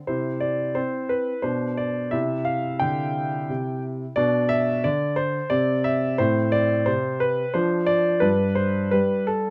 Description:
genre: classical-period piano sonatina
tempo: 88 BPM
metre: 3/4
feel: straight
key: unclear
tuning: A4 = 438 Hz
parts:
  - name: warm grand piano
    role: solo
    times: 0.0-9.5 s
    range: G2 to G5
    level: -23 LUFS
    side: equal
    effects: none
room: light reverb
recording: none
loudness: -23 LUFS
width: mono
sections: 0.0-9.5 A section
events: none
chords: 0.1 C; 1.5 Bm; 2.1 C; 4.2 Bmadd11; 5.5 N.C.; 6.2 Am; 7.6 Dm7/F; 8.2 G5

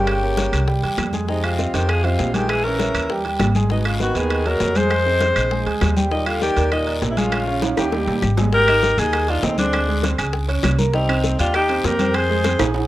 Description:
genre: Afro-Cuban jazz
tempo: 199 BPM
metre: 4/4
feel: straight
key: Eb major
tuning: A4 = 441 Hz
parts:
  - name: clear alto saxophone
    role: melody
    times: 0.0-12.6 s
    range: D4 to C5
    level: -22 LUFS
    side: left 2 dB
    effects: analog delay
  - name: warm tenor saxophone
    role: second line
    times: 0.0-12.6 s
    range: Bb2 to Ab4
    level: -29 LUFS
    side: right 1 dB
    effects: none
  - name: warm concert grand piano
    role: accompaniment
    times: 0.0-12.8 s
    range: G3 to Ab5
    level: -25 LUFS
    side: right 3 dB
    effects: none
  - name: upright bass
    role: bass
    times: 0.0-12.9 s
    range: G1 to F2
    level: -22 LUFS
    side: equal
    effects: none
  - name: bongos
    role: percussion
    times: 0.1-12.7 s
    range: none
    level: -29 LUFS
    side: left 6 dB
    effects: none
  - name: claves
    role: percussion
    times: 0.1-12.7 s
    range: none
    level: -30 LUFS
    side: right 1 dB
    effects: none
  - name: congas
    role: percussion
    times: 0.1-12.9 s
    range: none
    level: -27 LUFS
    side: left 2 dB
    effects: none
  - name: guiro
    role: percussion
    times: 0.1-12.9 s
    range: none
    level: -33 LUFS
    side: left 4 dB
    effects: none
  - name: timbales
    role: percussion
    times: 0.1-12.8 s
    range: none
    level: -27 LUFS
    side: right 5 dB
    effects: none
room: light reverb, studio ambience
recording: rough home demo mix, cassette tape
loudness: -17 LUFS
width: side -15 dB against mid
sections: 0.0-8.5 A section; 8.5-12.9 B section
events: drum fill 7.6-8.5, 12.4-12.9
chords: 0.1 Gdim; 0.7 C; 1.3 Fm7; 2.5 Bbm7b5; 3.1 Eb; 3.7 Abm7; 4.9 Fm7; 5.5 Ebmaj7; 7.3 Bbm7; 7.9 Eb; 8.5 Abmaj9; 9.7 Abadd11; 10.3 Db5; 10.9 Cm7; 12.1 Fm

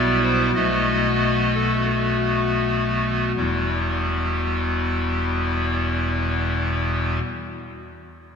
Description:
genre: classical, chorale-style piece for pipe organ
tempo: 40-48 BPM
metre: 4/4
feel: rubato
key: E minor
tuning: A4 = 436 Hz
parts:
  - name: pipe organ, clarinet reed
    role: solo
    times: 0.0-7.2 s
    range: E1 to D#5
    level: -20 LUFS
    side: left 1 dB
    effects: none
room: wet church reverb, RT60 3.5 s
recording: small room ambience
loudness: -19 LUFS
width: side -6 dB against mid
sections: 0.0-3.4 A section; 3.4-8.4 B section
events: slowing down 0.0-3.4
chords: 0.0 Em/B; 0.6 B5; 3.4 Em

